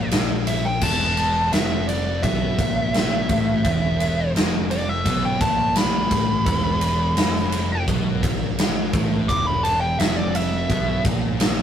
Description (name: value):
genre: stoner and doom metal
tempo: 85 BPM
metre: 4/4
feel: straight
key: unclear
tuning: A4 = 441 Hz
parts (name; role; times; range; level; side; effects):
- fuzz lead guitar; melody; 0.0-11.0 s; D5 to D6; -24 LUFS; right 1 dB; distortion
- thick fuzz guitar; riff; 0.0-11.6 s; E2 to B2; -28 LUFS; left 3 dB; distortion
- thick fuzz guitar; riff; 0.0-11.6 s; E2 to B2; -30 LUFS; right 3 dB; none
- picked electric bass; bass; 0.0-11.6 s; E1 to B1; -26 LUFS; equal; overdrive
- big rock drum kit; drums; 0.1-11.6 s; crash cymbal, kick drum, ride cymbal, snare drum; -22 LUFS; equal; none
room: light reverb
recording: rough rehearsal-room recording, tube saturation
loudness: -18 LUFS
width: side -9 dB against mid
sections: 0.0-11.6 A section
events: lead electric guitar solo 0.0-11.6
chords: 0.0 E5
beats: 0.13 | 0.83 1.54 2.24 2.95 | 3.65 4.36 5.06 5.77 | 6.47 7.17 7.88 8.58 | 9.29 9.99 10.70 11.40